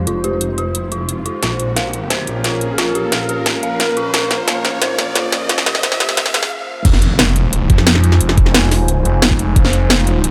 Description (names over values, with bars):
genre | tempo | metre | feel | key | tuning
dark technical drum and bass | 177 BPM | 4/4 | straight | F minor | A4 = 440 Hz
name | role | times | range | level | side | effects
dark analog pad | sustained chords | 0.0-10.3 s | Ab3 to Db5 | -27 LUFS | equal | chorus, phaser, sidechain pumping
snarling distorted saw bass | bass | 0.0-10.3 s | F1 to F2 | -20 LUFS | equal | distortion, overdrive
riser and impact | sound effects | 0.0-8.2 s | none | -26 LUFS | equal | none
deep dark ambient pad | texture | 0.0-10.3 s | F4 to Eb6 | -27 LUFS | equal | chorus, built-in reverb, sidechain pumping
dark detuned synth bell | arpeggios | 0.1-6.5 s | F4 to F5 | -27 LUFS | equal | chorus, phaser, sidechain pumping, low-pass filter, delay
drum and bass drum kit | drums | 0.1-10.3 s | crash cymbal, hi-hat, snare drum | -18 LUFS | equal | high-pass filter on hats, high-pass filter on snare, high-pass filter on cymbals, high-pass filter on room
electronic kick drum | drums | 6.8-9.6 s | none | -15 LUFS | equal | none
room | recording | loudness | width
light reverb, digital ambience | high-pass filter | -15 LUFS | mono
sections
0.0-6.8 A section; 6.8-10.3 B section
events
build-up 0.0-6.8; riser 0.0-6.5; filter sweep on synth bell 0.0-6.8; filter sweep 0.0-6.8; drum fill 1.4-6.5; break 6.5-6.8; drop 6.8-10.3; impact 6.8-8.2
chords
0.0 Fm7; 1.4 Bbm; 6.8 Fm7